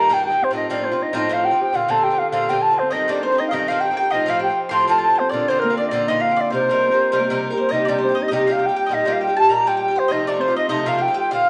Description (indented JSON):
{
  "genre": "celtic folk, Celtic reel",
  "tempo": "201 BPM",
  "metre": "4/4",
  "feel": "swing 56% on 8ths",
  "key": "C dorian",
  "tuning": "A4 = 440 Hz",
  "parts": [
    { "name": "mellow wooden flute", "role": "melody", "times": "0.0-11.5 s", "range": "Bb4 to C6", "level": "-21 LUFS", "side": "equal", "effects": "slapback echo" },
    { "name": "Celtic harp", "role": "second line", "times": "0.0-11.5 s", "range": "Bb3 to C5", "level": "-31 LUFS", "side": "equal", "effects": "slapback echo" },
    { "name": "Irish bouzouki", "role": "accompaniment", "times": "0.0-11.5 s", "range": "G2 to Bb4", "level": "-26 LUFS", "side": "equal", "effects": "none" },
    { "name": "mandolin", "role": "second line", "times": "2.9-11.5 s", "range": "Bb4 to C6", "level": "-30 LUFS", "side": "equal", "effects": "none" }
  ],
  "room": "moderate echo chamber reverb, RT60 1.2 s, small room ambience",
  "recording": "nothing above 10.3 kHz",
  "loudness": "-19 LUFS",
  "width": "mono",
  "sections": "0.0-7.7 A section; 7.7-11.5 A section",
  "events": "none",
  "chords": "0.0 Eb; 0.5 F; 1.7 Bbadd9; 2.9 Cm; 4.1 F; 5.3 Bbadd9; 6.5 Cm7; 7.7 Cm; 8.9 Eb; 10.1 F",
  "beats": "0.23 | 0.53 0.83 1.13 1.43 | 1.73 2.02 2.32 2.62 | 2.92 3.22 3.52 3.82 | 4.12 4.42 4.72 5.02 | 5.32 5.62 5.92 6.22 | 6.51 6.82 7.11 7.41 | 7.71 8.01 8.31 8.61 | 8.91 9.21 9.51 9.80 | 10.10 10.40 10.70 11.00 | 11.29"
}